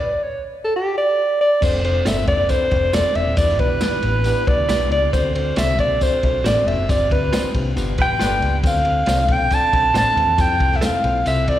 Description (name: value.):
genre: uptempo 1960s-style soul.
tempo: 137 BPM.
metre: 4/4.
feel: straight.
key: unclear.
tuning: A4 = 440 Hz.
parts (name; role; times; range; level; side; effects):
warm alto saxophone; melody; 0.0-11.6 s; G4 to A5; -18 LUFS; right 1 dB; slapback echo, tape echo.
mellow tine electric piano; accompaniment; 1.6-11.6 s; G2 to D5; -27 LUFS; left 6 dB; fast stereo tremolo, slapback echo.
picked electric bass; bass; 1.6-11.5 s; Eb1 to F2; -22 LUFS; equal; none.
crunchy breakbeat drum kit; drums; 1.6-11.6 s; crash cymbal, kick drum, ride cymbal, snare drum; -23 LUFS; equal; none.
tambourine; percussion; 1.6-11.4 s; none; -35 LUFS; right 1 dB; none.
direct-recorded clean electric guitar; stabs; 2.1-10.9 s; E4 to E5; -30 LUFS; right 8 dB; slapback echo.
warm horn section; second line; 8.0-8.6 s; F4 to B4; -29 LUFS; right 2 dB; slapback echo.
room: light reverb.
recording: live gig heard through the venue's PA, recital hall reverb.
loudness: -16 LUFS.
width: side -12 dB against mid.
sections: 0.0-1.6 A section; 1.6-11.6 B section.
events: stop 0.0-1.6; band accent 6.9-8.6.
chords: 0.0 N.C.; 1.6 F6; 3.4 Em7; 5.1 D7; 6.9 G7sus4; 7.8 G7; 8.6 Dm7; 10.4 Fmaj7.